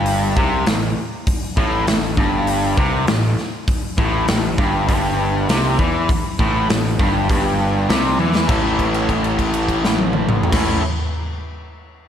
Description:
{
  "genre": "blues rock power trio and southern rock",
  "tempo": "100 BPM",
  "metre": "4/4",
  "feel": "straight",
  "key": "A mixolydian",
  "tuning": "A4 = 440 Hz",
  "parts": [
    { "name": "fuzz guitar", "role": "riff", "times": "0.0-10.8 s", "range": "G2 to A4", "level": "-19 LUFS", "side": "equal", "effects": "distortion" },
    { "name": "fuzz picked electric bass", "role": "bass", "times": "0.0-10.8 s", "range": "G1 to E2", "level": "-23 LUFS", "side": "equal", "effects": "overdrive" },
    { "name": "big rock drum kit", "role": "drums", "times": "0.1-10.7 s", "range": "crash cymbal, hi-hat, kick drum, snare drum, toms", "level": "-20 LUFS", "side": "equal", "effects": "none" }
  ],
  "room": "moderate lush hall reverb, RT60 2.7 s",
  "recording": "big arena sound",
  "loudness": "-16 LUFS",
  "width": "side -9 dB against mid",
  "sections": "0.0-8.5 A section; 8.5-10.9 B section",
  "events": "drum fill 8.2; held note 8.5-10.5",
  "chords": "0.0 A5; 8.5 A"
}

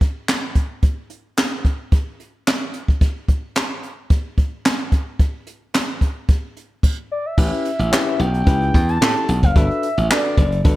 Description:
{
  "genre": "early-eighties boogie funk",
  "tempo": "110 BPM",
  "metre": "4/4",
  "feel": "straight",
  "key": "unclear",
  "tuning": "A4 = 440 Hz",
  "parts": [
    { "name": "jazz brush drum kit", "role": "drums", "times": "0.0-10.8 s", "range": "crash cymbal, handclaps, hi-hat, kick drum, snare drum", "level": "-17 LUFS", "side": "equal", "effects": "gated reverb" },
    { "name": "gliding portamento lead", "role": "melody", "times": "7.1-10.6 s", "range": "D5 to A5", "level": "-23 LUFS", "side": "equal", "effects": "chorus, phaser, slapback echo" },
    { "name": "tine electric piano", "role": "accompaniment", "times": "7.4-10.8 s", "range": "C#4 to B4", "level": "-24 LUFS", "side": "left 3 dB", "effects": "overdrive" },
    { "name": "glassy slap bass", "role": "bass", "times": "7.4-10.8 s", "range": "F#1 to A2", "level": "-19 LUFS", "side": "equal", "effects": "none" }
  ],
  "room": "small room ambience",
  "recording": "none",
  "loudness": "-17 LUFS",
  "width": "side -17 dB against mid",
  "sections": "0.0-7.4 A section; 7.4-10.8 B section",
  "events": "none",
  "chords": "0.0 N.C.; 7.4 A9; 9.6 Gmaj9"
}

